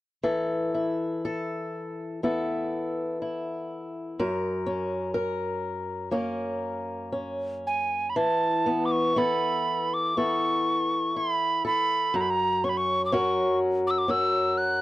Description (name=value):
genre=celtic folk, Celtic slow air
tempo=60 BPM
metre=4/4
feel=uneven beats, rubato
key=unclear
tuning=A4 = 441 Hz
part: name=fingerpicked swing-style acoustic guitar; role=accompaniment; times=0.2-14.8 s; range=F#2 to A#4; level=-27 LUFS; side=left 1 dB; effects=none
part: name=mellow wooden whistle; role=melody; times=7.7-14.8 s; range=G#5 to F#6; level=-25 LUFS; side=right 1 dB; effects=none
room=light reverb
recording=dry, close 1970s-style studio recording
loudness=-24 LUFS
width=side -16 dB against mid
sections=0.2-8.2 A section; 8.2-14.8 B section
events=none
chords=0.2 Esus4; 4.2 F#; 8.2 Esus4; 12.1 F#